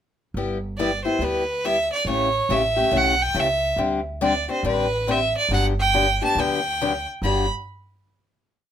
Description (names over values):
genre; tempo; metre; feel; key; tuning
acoustic string swing (jazz manouche); 139 BPM; 4/4; swing 62% on 8ths; G major; A4 = 437 Hz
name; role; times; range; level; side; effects
upright bass; bass; 0.3-7.5 s; G1 to D2; -28 LUFS; right 1 dB; none
picked steel-string acoustic guitar; accompaniment; 0.4-7.5 s; G2 to G4; -24 LUFS; left 4 dB; none
clear violin; melody; 0.8-7.5 s; B4 to B5; -22 LUFS; right 2 dB; none
room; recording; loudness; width
moderate studio reverb, RT60 0.5 s; minimal, uncompressed stereo recording; -19 LUFS; side -9 dB against mid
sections
0.3-7.2 A section; 7.2-8.7 final chord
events
none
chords
0.3 G6; 2.1 A7; 3.8 D7sus4; 5.5 Gmaj7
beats
| 0.34 0.77 1.20 1.63 | 2.06 2.49 2.92 3.35 | 3.78 4.21 4.64 5.08 | 5.50 5.94 6.37 6.80 | 7.23